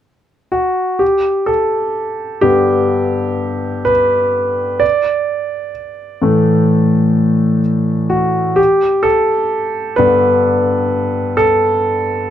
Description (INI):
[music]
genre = pop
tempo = 64 BPM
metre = 4/4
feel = straight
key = G major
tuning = A4 = 440 Hz
[part]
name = warm concert grand piano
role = accompaniment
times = 0.5-12.3 s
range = G2 to D5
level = -12 LUFS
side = equal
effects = none
[sound]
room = wet small room ambience, RT60 0.5 s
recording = none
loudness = -12 LUFS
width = side -10 dB against mid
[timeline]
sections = 1.0-12.3 A section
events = grand piano solo 1.0-12.3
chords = 0.0 N.C.; 1.0 Gadd9; 4.8 Dsus2; 8.6 Gadd9